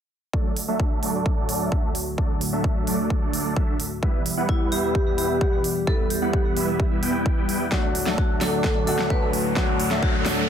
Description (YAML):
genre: EDM, festival progressive house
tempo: 130 BPM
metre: 4/4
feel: straight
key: D major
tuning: A4 = 440 Hz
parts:
  - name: lush unison pad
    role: sustained chords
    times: 0.3-10.5 s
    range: D2 to G3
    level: -30 LUFS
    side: equal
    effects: chorus, sidechain pumping
  - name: supersaw chords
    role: riff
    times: 0.3-10.5 s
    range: F#3 to G5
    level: -27 LUFS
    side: right 1 dB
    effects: phaser, sidechain pumping, low-pass filter, digital delay
  - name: electronic kick drum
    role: drums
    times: 0.3-10.1 s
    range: none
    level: -23 LUFS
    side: equal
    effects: none
  - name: pop drum kit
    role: drums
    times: 0.6-10.3 s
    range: hi-hat, snare drum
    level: -29 LUFS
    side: right 1 dB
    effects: none
  - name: vibraphone with hard mallets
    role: melody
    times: 4.5-10.5 s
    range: E4 to B4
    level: -27 LUFS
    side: equal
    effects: digital delay
  - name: clear concert grand piano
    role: accompaniment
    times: 7.7-10.5 s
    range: F#3 to F#4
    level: -27 LUFS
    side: left 4 dB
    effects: sidechain pumping
  - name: riser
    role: sound effects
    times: 8.7-10.5 s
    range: none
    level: -30 LUFS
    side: equal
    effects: none
room: light reverb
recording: none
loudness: -20 LUFS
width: side -8 dB against mid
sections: 0.3-7.7 A section; 7.7-10.5 B section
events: build-up 7.7-10.5; drum fill 7.7-10.5; filter sweep on supersaw synth 7.7-10.5; riser 8.7-10.5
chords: 0.3 D; 4.0 Em; 7.7 D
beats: | 0.34 0.80 1.26 1.72 | 2.18 2.64 3.10 3.57 | 4.03 4.49 4.95 5.41 | 5.87 6.33 6.80 7.26 | 7.72 8.18 8.64 9.10 | 9.57 10.03 10.49